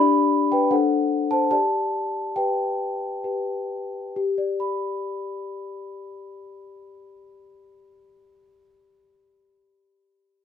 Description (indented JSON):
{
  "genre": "classical, lullaby for celesta",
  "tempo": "64-82 BPM",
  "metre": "3/4",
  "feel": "rubato",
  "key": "G major",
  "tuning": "A4 = 440 Hz",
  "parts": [
    { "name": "large celesta", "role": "solo", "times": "0.0-10.4 s", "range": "D4 to B5", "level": "-22 LUFS", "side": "left 2 dB", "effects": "none" }
  ],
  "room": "light reverb",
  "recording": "close, detailed microphones",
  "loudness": "-22 LUFS",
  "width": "side -8 dB against mid",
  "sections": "0.0-4.2 A section; 4.2-9.7 B section",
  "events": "slowing down 0.0-4.2",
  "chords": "0.0 G/D; 0.7 D7; 1.5 G"
}